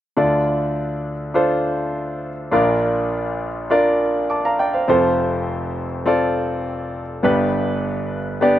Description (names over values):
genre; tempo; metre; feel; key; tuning
pop; 102 BPM; 4/4; straight; D minor; A4 = 437 Hz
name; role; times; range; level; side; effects
clear concert grand piano; accompaniment; 0.2-8.6 s; F1 to D6; -18 LUFS; equal; none
room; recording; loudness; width
little or no reverb; recorded outdoors, with no room sound; -18 LUFS; side -12 dB against mid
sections
0.2-8.6 A section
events
none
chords
0.2 Dm; 2.5 Bb; 4.9 F; 7.2 G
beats
| 0.17 0.76 1.35 1.94 | 2.53 3.12 3.71 4.29 | 4.88 5.47 6.06 6.65 | 7.24 7.83 8.42